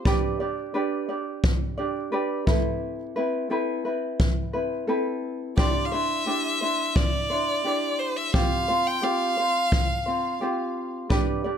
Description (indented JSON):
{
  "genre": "acoustic pop",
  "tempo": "87 BPM",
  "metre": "4/4",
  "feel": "straight",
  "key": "unclear",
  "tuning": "A4 = 438 Hz",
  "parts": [
    { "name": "ukulele", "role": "accompaniment", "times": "0.0-11.6 s", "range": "C4 to D5", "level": "-26 LUFS", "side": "equal", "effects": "plate reverb" },
    { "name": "kick drum", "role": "drums", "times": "0.1-11.3 s", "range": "none", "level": "-23 LUFS", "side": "equal", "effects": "none" },
    { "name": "bright violin", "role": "melody", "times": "5.6-10.4 s", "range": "C5 to G5", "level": "-26 LUFS", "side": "equal", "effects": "plate reverb, ping-pong delay" }
  ],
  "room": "moderate studio reverb, RT60 0.6 s",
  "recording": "none",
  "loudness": "-23 LUFS",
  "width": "side -8 dB against mid",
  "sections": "0.0-11.6 A section",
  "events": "none",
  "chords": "0.1 G; 2.5 Amadd9; 5.6 Cadd9; 8.3 Fsus2"
}